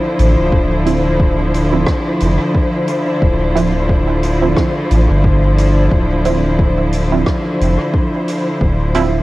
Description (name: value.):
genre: ambient dub.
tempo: 89 BPM.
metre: 4/4.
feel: swing 57% on 16ths.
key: D minor.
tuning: A4 = 441 Hz.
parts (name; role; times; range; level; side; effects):
muted studio string section; sustained chords; 0.0-9.2 s; D3 to C5; -16 LUFS; left 1 dB; cassette tape.
soft dub sub bass; bass; 0.2-9.2 s; D1 to A1; -15 LUFS; equal; none.
soft-mallet drum kit; drums; 0.2-9.1 s; hi-hat, rim click; -29 LUFS; right 1 dB; cassette tape, dub echo.
electronic kick drum; drums; 0.5-8.8 s; none; -16 LUFS; equal; cassette tape.
filtered dub chord stab; stabs; 0.9-9.2 s; F3 to E4; -20 LUFS; right 6 dB; chorus, cassette tape, dub echo.
room: small room ambience.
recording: home recording on cassette.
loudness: -12 LUFS.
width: side -18 dB against mid.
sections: 0.0-9.2 A section.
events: none.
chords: 0.0 Dm9.